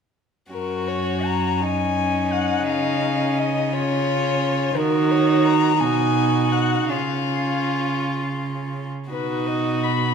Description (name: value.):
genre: classical, slow romantic movement for string quartet.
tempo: 53-59 BPM (dotted quarters).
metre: 6/8.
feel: rubato.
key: F# major.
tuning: A4 = 439 Hz.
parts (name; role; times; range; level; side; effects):
dark violin; melody; 0.5-10.1 s; A#4 to B5; -25 LUFS; left 8 dB; none.
rich violin; second line; 0.5-10.1 s; D#4 to F#4; -26 LUFS; left 3 dB; none.
warm viola; accompaniment; 0.5-10.1 s; C#4 to D#4; -24 LUFS; right 3 dB; none.
warm cello; bass; 0.5-10.1 s; F#2 to D#3; -25 LUFS; right 5 dB; none.
room: wet recital hall reverb, RT60 1.5 s.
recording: minimal, uncompressed stereo recording.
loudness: -19 LUFS.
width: side -6 dB against mid.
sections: 0.5-10.1 A section.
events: none.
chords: 0.5 F#5; 2.7 C#add9; 4.8 D#m; 5.8 B6; 6.9 C#; 9.1 B.